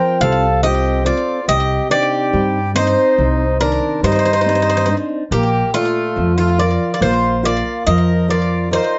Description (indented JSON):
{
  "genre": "greek folk, Greek bouzouki band",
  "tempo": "141 BPM (eighths)",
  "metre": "9/8",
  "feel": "straight",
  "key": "unclear",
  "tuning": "A4 = 440 Hz",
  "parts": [
    { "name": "Greek bouzouki", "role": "melody", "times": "0.0-9.0 s", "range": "F4 to G5", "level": "-21 LUFS", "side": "equal", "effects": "slapback echo" },
    { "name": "accordion", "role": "second line", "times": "0.0-9.0 s", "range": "A3 to Bb4", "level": "-23 LUFS", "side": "equal", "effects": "none" },
    { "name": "fingerpicked steel-string acoustic guitar", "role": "accompaniment", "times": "0.0-9.0 s", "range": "Bb2 to F5", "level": "-22 LUFS", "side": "equal", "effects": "none" },
    { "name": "upright bass", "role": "bass", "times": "0.2-8.8 s", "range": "Bb1 to G2", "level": "-21 LUFS", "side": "equal", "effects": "none" }
  ],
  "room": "moderate small room reverb, RT60 0.6 s",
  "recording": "nothing above 7.8 kHz",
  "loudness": "-16 LUFS",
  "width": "mono",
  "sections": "0.0-9.0 A section",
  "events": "none",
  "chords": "0.0 F; 1.5 Cmadd9; 5.3 Bb",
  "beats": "0.21 0.64 1.06 | 1.48 1.91 2.33 2.76 3.18 3.61 4.03 4.46 4.88 | 5.31 5.74 6.16 6.59 7.01 7.44 7.86 8.29 8.71"
}